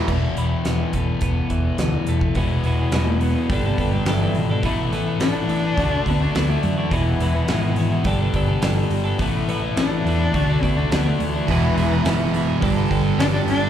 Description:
quiet-loud alternative rock; 105 BPM; 4/4; straight; A4 = 440 Hz
twelve-string electric guitar; arpeggios; 0.0-13.7 s; E2 to A4; -26 LUFS; right 4 dB; slapback echo, digital delay
fuzz guitar; riff; 0.0-13.7 s; E2 to D4; -26 LUFS; left 10 dB; distortion, slapback echo
thick fuzz guitar; riff; 0.0-0.1, 11.5-13.7 s; E2 to G3; -23 LUFS; right 13 dB; distortion, slapback echo
picked electric bass; bass; 0.1-13.7 s; E1 to F#2; -23 LUFS; equal
huge arena drum kit; drums; 0.1-13.6 s; crash cymbal, hi-hat, kick drum, snare drum; -26 LUFS; right 1 dB
dark cello; melody; 2.9-13.7 s; B2 to D4; -25 LUFS; left 2 dB; slapback echo, digital delay
little or no reverb; live gig heard through the venue's PA, club reverb; -18 LUFS; side -10 dB against mid
0.1-2.4 A section; 2.4-13.7 B section
cello solo 2.4-13.7
0.1 Esus4; 2.4 E; 3.5 Gadd9; 4.6 Asus2; 5.8 D; 6.9 E; 8.1 Gadd9; 9.2 Asus2; 10.3 D; 11.5 E; 12.6 Gadd9
| 0.07 0.64 1.21 1.78 | 2.35 2.92 3.49 4.06 | 4.63 5.21 5.78 6.35 | 6.92 7.49 8.06 8.63 | 9.20 9.77 10.34 10.91 | 11.48 12.05 12.62 13.19

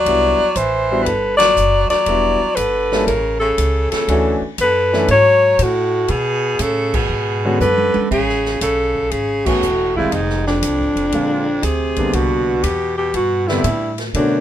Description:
jazz, small-group swing and bop; 119 BPM; 4/4; swing 67% on 8ths; A major; A4 = 440 Hz
breathy alto saxophone; melody; 0.0-14.4 s; D4 to D5; -17 LUFS; left 2 dB
bright baritone saxophone; second line; 0.0-14.4 s; F2 to F#3; -23 LUFS; right 6 dB
upright bass; bass; 0.0-14.4 s; E1 to B2; -23 LUFS; right 1 dB
clear concert grand piano; accompaniment; 0.1-14.4 s; D3 to A4; -21 LUFS; left 1 dB
swinging big-band drum kit; drums; 0.1-14.3 s; crash cymbal, hi-hat, kick drum, ride cymbal, snare drum, toms; -27 LUFS; right 1 dB
light reverb; minimal, uncompressed stereo recording; -14 LUFS; side -11 dB against mid
0.0-8.1 A section; 8.1-14.4 B section
band accent 1.3, 6.9, 9.4; drum fill 7.6-8.1
0.1 Cmaj9#11; 2.1 Em9; 3.1 A; 4.1 Dmaj7; 6.1 Amaj9; 7.1 Bm69; 8.1 Amaj7; 10.1 Fm; 11.1 Bb9; 12.1 Cmaj9
| 0.07 0.57 1.07 1.57 | 2.07 2.58 3.08 3.58 | 4.08 4.59 5.09 5.59 | 6.10 6.60 7.10 7.61 | 8.11 8.61 9.12 9.62 | 10.12 10.63 11.13 11.63 | 12.14 12.64 13.14 13.65 | 14.15

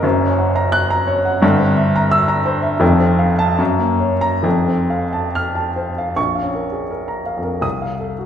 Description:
classical, romantic character piece for solo piano; 65-88 BPM; 2/4; rubato; Bb minor; A4 = 441 Hz
warm upright piano; solo; 0.0-8.3 s; F1 to Gb6; -15 LUFS; equal
wet recital hall reverb, RT60 1.6 s; recorded in a church or concert hall; -15 LUFS; side -9 dB against mid
0.0-6.2 A section; 6.2-8.3 B section
0.0 Gb; 1.4 C7/G; 2.8 F; 3.6 Gb; 4.4 F; 6.2 Bbm; 7.6 F7/C
| 0.04 0.73 | 1.42 2.11 | 2.81 3.59 | 4.45 5.34 | 6.17 6.91 | 7.64

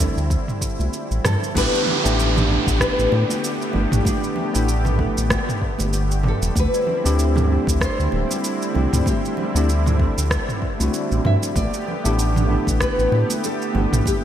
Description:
sunset chillout; 96 BPM; 4/4; swing 57% on 16ths; A4 = 444 Hz
nylon-string guitar; melody; 0.0-14.2 s; D4 to E5; -26 LUFS; left 1 dB; wide subtle chorus, digital delay
tine electric piano; accompaniment; 0.0-14.2 s; A3 to A4; -26 LUFS; right 1 dB; auto-pan, digital delay
lush unison pad; sustained chords; 0.0-14.2 s; D3 to G4; -27 LUFS; left 1 dB; chorus
round analog bass; bass; 0.0-14.0 s; D1 to A2; -20 LUFS; equal
deep house drum kit; drums; 0.0-14.2 s; crash cymbal, rim click, shaker, toms; -26 LUFS; right 1 dB; overdrive, gated reverb
electronic kick drum; drums; 0.3-14.2 s; -24 LUFS; equal
congas; percussion; 0.8-14.2 s; -30 LUFS; right 2 dB
downlifter; sound effects; 1.6-6.6 s; -26 LUFS; right 2 dB
light reverb; bright 1980s-style digital production; -18 LUFS; side -10 dB against mid
0.0-1.6 A section; 1.6-14.2 B section
0.0 D9sus4; 1.6 A9sus4; 6.6 D9sus4; 11.6 A9sus4
0.31 0.94 | 1.56 2.19 2.81 3.44 | 4.06 4.68 5.31 5.93 | 6.56 7.18 7.81 8.44 | 9.06 9.69 10.31 10.94 | 11.56 12.19 12.81 13.44 | 14.06

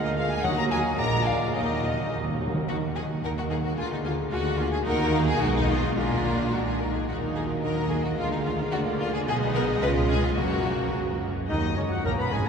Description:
quick classical-period movement for symphony orchestra; 109 BPM; 2/4; straight; Eb minor, F# major from 9.3 s; A4 = 440 Hz
warm studio violin section; melody; 0.0-12.5 s; Bb4 to B5; -34 LUFS; left 3 dB
hollow concert flute; second line; 0.0-2.1, 11.5-12.5 s; C#5 to B5; -36 LUFS; left 2 dB
warm clarinet; second line; 0.0-2.4, 11.5-12.5 s; C#4 to B4; -38 LUFS; equal
warm oboe; second line; 0.0-2.4, 11.5-12.5 s; C#5 to B5; -38 LUFS; equal
warm studio violin section; second line; 0.0-12.5 s; C#4 to B4; -31 LUFS; left 2 dB
rich chamber viola section; accompaniment; 0.0-12.5 s; C#3 to Gb4; -32 LUFS; right 2 dB
warm bassoon; accompaniment; 0.0-2.4, 12.1-12.5 s; Gb3 to C#4; -37 LUFS; right 3 dB
dark chamber cello section; bass; 0.0-12.5 s; C#2 to Eb3; -30 LUFS; right 2 dB
rich chamber double bass section; bass; 0.0-12.5 s; F#1 to Eb2; -31 LUFS; right 2 dB
warm French horn section; sustained chords; 0.2-12.5 s; C#3 to Ab4; -33 LUFS; left 4 dB
timpani; percussion; 0.4-2.6, 10.4-11.2 s; F#2 to Eb3; -36 LUFS; right 1 dB
wet cathedral reverb, RT60 6.1 s; minimal, uncompressed stereo recording; -23 LUFS; side -6 dB against mid
0.0-2.7 A section; 2.7-11.5 B section
timpani fill 1.6-2.7
0.4 Ebm; 1.0 Bb7; 1.6 Ebm; 3.8 Bb7/D; 4.9 Ebm; 5.4 Abm/Cb; 6.0 Bb; 7.1 Ebm; 8.2 Bb7/D; 9.3 G#m/B; 9.8 C#; 10.4 F#
| 0.45 1.00 | 1.56 2.12 | 2.68 3.23 | 3.78 4.32 | 4.86 5.41 | 5.96 6.52 | 7.08 7.64 | 8.18 8.72 | 9.28 9.82 | 10.37 10.94 | 11.50 12.05

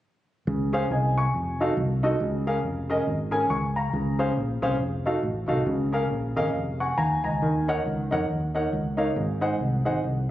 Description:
uptempo gospel; 138 BPM; 4/4; swing 61% on 8ths; Db major; A4 = 439 Hz
warm grand piano; accompaniment; 0.5-10.0 s; Ab2 to Db6; -25 LUFS; equal
fingered electric bass; bass; 0.5-10.3 s; F1 to F2; -27 LUFS; equal
moderate echo chamber reverb, RT60 1.9 s; recorded on a phone in the room, club reverb, compression; -23 LUFS; side -14 dB against mid
0.5-3.9 A section; 3.9-10.3 B section
grand piano fill 6.1-7.4
0.5 Dbmaj7(no3); 1.3 F7b9; 2.2 Bbm7; 3.9 Dbmaj7; 4.8 F7b9; 5.7 Bbm7; 7.4 Ebm7; 9.2 Ab7
| 0.47 0.90 1.33 1.76 | 2.20 2.63 3.07 3.50 | 3.94 4.37 4.80 5.24 | 5.67 6.11 6.54 6.98 | 7.42 7.85 8.29 8.72 | 9.16 9.59 10.03

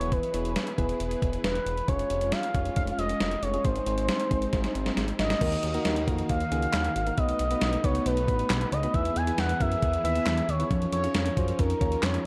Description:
synth-pop; 136 BPM; 4/4; straight; A4 = 441 Hz
expressive synth lead; melody; 0.0-12.2 s; Bb4 to G#5; -32 LUFS; equal; chorus, shimmer reverb
soft electric-piano-like synth keys; accompaniment; 0.0-12.2 s; Bb3 to Eb5; -36 LUFS; equal; chorus, tremolo, shimmer reverb
string machine, violas; sustained chords; 0.0-12.3 s; Eb3 to F5; -38 LUFS; equal; ensemble chorus, shimmer reverb
fat analog bass; bass; 0.0-12.2 s; E1 to Gb2; -33 LUFS; equal
clean 12-bit digital drum machine; drums; 0.0-12.2 s; crash cymbal, handclaps, hi-hat, kick drum, snare drum; -32 LUFS; equal
light reverb, digital ambience; dark, warm production; -27 LUFS; mono
0.0-5.4 A section; 5.4-12.3 B section
drum fill 4.5-5.4
0.0 E; 1.9 Db/F; 3.6 Ab; 5.4 Ebmadd9; 7.2 Cb7; 8.9 E; 10.7 Db6/F
| 0.12 0.56 1.00 1.44 | 1.88 2.33 2.77 3.21 | 3.65 4.09 4.53 4.97 | 5.41 5.85 6.29 6.74 | 7.18 7.62 8.06 8.50 | 8.94 9.38 9.82 10.27 | 10.71 11.15 11.59 12.03

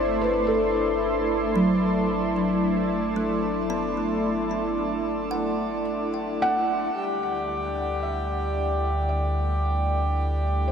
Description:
ambient; 56 BPM; 4/4; straight; A4 = 442 Hz
felt-muted upright piano; melody; 0.0-10.7 s; A4 to F#5; -28 LUFS; left 1 dB; shimmer reverb, ping-pong delay
warm analog pad; sustained chords; 0.0-10.7 s; D3 to C6; -28 LUFS; right 1 dB; chorus, shimmer reverb
kalimba; arpeggios; 0.0-8.8 s; F#3 to A5; -29 LUFS; left 1 dB; ping-pong delay
warm sub bass; bass; 0.0-10.7 s; G1 to D2; -30 LUFS; equal
pedal harmonium; drone; 0.0-10.7 s; G3 to A4; -33 LUFS; right 1 dB
glass harmonica; texture; 0.0-10.7 s; D5 to D6; -33 LUFS; left 2 dB; shimmer reverb
wet huge ambient reverb, RT60 9.3 s; -22 LUFS; side -7 dB against mid
0.0-6.9 A section; 6.9-10.7 B section
fade-out on sub bass 0.0-6.9
0.0 D7/G; 6.9 Dadd9
0.49 1.56 | 2.63 3.70 4.77 5.86 | 6.95 8.02 9.10 10.16

